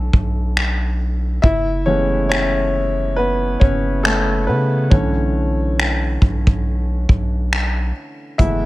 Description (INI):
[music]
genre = contemporary R&B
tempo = 69 BPM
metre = 4/4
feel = swing 58% on 16ths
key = unclear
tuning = A4 = 435 Hz
[part]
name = warm grand piano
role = accompaniment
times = 0.0-8.7 s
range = D3 to E5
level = -20 LUFS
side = left 1 dB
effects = none
[part]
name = long sustained 808-style bass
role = bass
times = 0.0-8.7 s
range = F#1 to C#3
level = -20 LUFS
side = equal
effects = none
[part]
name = soft brush drum kit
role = drums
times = 0.1-8.6 s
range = finger snaps, hi-hat, kick drum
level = -18 LUFS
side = equal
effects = none
[sound]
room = small room ambience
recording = none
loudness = -15 LUFS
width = side -18 dB against mid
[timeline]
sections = 0.0-8.7 A section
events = grand piano solo 0.0-8.7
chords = 0.0 Bm11; 1.4 F#m11; 4.9 Bm11